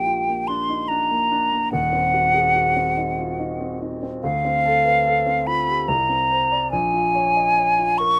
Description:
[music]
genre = classical, impressionist duo for flute and grand piano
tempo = 72 BPM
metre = 3/4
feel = rubato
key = Bb mixolydian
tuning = A4 = 440 Hz
[part]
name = hollow concert flute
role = melody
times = 0.0-8.2 s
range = F5 to Db6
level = -21 LUFS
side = equal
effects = none
[part]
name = dark baby grand piano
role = accompaniment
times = 0.0-8.2 s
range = Eb1 to Eb5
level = -28 LUFS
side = equal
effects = none
[sound]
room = light reverb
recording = close, detailed microphones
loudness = -20 LUFS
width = mono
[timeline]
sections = 0.0-8.2 A section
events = none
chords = 0.0 Bb6; 1.7 Ebm6; 4.2 Dm7; 5.9 Bbadd9/C; 6.7 Bbm7

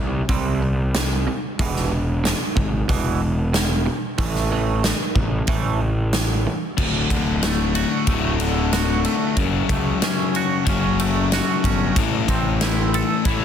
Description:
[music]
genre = quiet-loud alternative rock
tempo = 93 BPM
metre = 4/4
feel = straight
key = D major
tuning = A4 = 441 Hz
[part]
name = twangy electric guitar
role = arpeggios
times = 0.0-13.4 s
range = D2 to A4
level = -26 LUFS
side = right 8 dB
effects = analog chorus, slapback echo
[part]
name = fuzz picked electric bass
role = bass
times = 0.0-13.4 s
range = D1 to C#2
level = -23 LUFS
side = equal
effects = overdrive
[part]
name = huge arena drum kit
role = drums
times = 0.3-13.4 s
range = crash cymbal, hi-hat, kick drum, ride cymbal, snare drum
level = -23 LUFS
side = equal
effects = none
[part]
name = overdriven electric guitar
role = riff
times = 6.8-13.4 s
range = D2 to A3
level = -23 LUFS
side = left 12 dB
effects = none
[sound]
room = small room ambience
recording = dense, heavily limited modern master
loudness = -18 LUFS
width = side -8 dB against mid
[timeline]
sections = 0.0-6.8 A section; 6.8-13.4 B section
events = none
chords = 0.0 C5; 1.6 E5; 4.2 A5; 6.8 D; 9.4 F#m; 12.0 Am

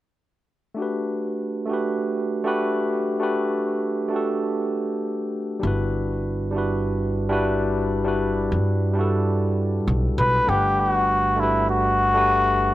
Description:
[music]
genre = sunset chillout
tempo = 99 BPM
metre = 4/4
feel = straight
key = unclear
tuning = A4 = 439 Hz
[part]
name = barky tine electric piano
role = accompaniment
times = 0.7-12.7 s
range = G3 to F#5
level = -23 LUFS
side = moving between left 3 dB and right 3 dB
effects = auto-pan, low-pass filter, analog delay
[part]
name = upright bass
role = bass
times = 5.6-12.7 s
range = G1 to G2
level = -25 LUFS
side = equal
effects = tube saturation
[part]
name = trumpet with cup mute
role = melody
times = 10.2-12.7 s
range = E4 to B4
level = -18 LUFS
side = left 1 dB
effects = none
[sound]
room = light reverb, studio ambience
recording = dry, gritty hardware recording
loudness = -20 LUFS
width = side -15 dB against mid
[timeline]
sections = 0.8-10.5 A section; 10.5-12.7 B section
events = none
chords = 0.8 Gmaj7; 5.6 Em7/G; 10.5 Gmaj7

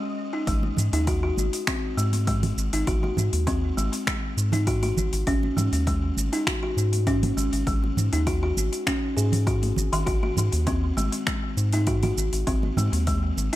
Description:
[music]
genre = organic downtempo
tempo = 100 BPM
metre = 4/4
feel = straight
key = unclear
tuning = A4 = 440 Hz
[part]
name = buzzing kalimba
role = arpeggios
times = 0.0-13.6 s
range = D#3 to G#4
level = -27 LUFS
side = left 1 dB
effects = ping-pong delay, shimmer reverb
[part]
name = wind-like tuned noise texture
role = texture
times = 0.0-0.5 s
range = D#5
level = -44 LUFS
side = right 1 dB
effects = built-in reverb, shimmer reverb
[part]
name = round analog bass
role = bass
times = 0.5-13.5 s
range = G#1 to G#2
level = -25 LUFS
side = equal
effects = none
[part]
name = deep house drum kit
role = drums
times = 0.5-13.6 s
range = finger snaps, hi-hat, shaker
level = -31 LUFS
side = equal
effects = overdrive
[part]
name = electronic kick drum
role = drums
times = 0.5-13.2 s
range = none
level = -29 LUFS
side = equal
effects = overdrive
[part]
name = congas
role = percussion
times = 0.6-13.5 s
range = none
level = -32 LUFS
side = right 4 dB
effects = none
[sound]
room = digital ambience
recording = none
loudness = -22 LUFS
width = side -15 dB against mid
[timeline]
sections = 0.5-13.6 A section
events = none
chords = 0.5 G#5; 5.3 C#sus2/G# (rootless); 10.1 G#5

